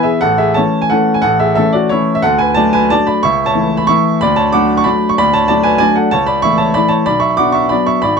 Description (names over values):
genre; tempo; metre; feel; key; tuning
classical, piano waltz; 169-196 BPM; 3/4; rubato; A major; A4 = 440 Hz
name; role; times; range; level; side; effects
warm baby grand piano; solo; 0.0-8.2 s; G#1 to D6; -10 LUFS; equal; none
room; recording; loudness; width
moderate small room reverb, RT60 0.5 s; dark, warm production; -10 LUFS; side -5 dB against mid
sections
0.0-8.2 A section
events
none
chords
0.2 A; 2.2 D; 3.2 A/C#; 4.2 D; 6.1 A/C#; 7.1 Bm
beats
| 0.22 0.57 0.92 | 1.24 1.58 1.92 | 2.24 2.57 2.90 | 3.23 3.54 3.87 | 4.20 4.53 4.86 | 5.17 5.49 5.81 | 6.12 6.43 6.76 | 7.07 7.39 7.72 | 8.04